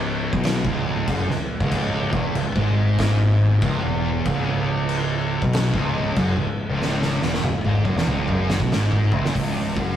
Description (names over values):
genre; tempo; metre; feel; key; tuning
stoner and doom metal; 94 BPM; 4/4; swing 65% on 8ths; C# minor; A4 = 440 Hz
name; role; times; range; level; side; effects
thick fuzz guitar; riff; 0.0-10.0 s; C#2 to B2; -21 LUFS; equal; distortion
growling fingered electric bass; bass; 0.0-10.0 s; C#1 to B1; -28 LUFS; equal; overdrive
oversized low-tuned drum kit; drums; 0.3-9.9 s; crash cymbal, hi-hat, kick drum, snare drum, toms; -25 LUFS; equal; none
room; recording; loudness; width
wet studio reverb, RT60 0.5 s; rough rehearsal-room recording, tube saturation; -19 LUFS; side -10 dB against mid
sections
0.0-9.4 A section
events
drum fill 6.8-9.4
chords
0.0 C#m; 9.4 N.C.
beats
0.44 1.08 | 1.72 2.35 2.99 3.63 | 4.26 4.90 5.54 6.17 | 6.81 7.45 8.08 8.72 | 9.36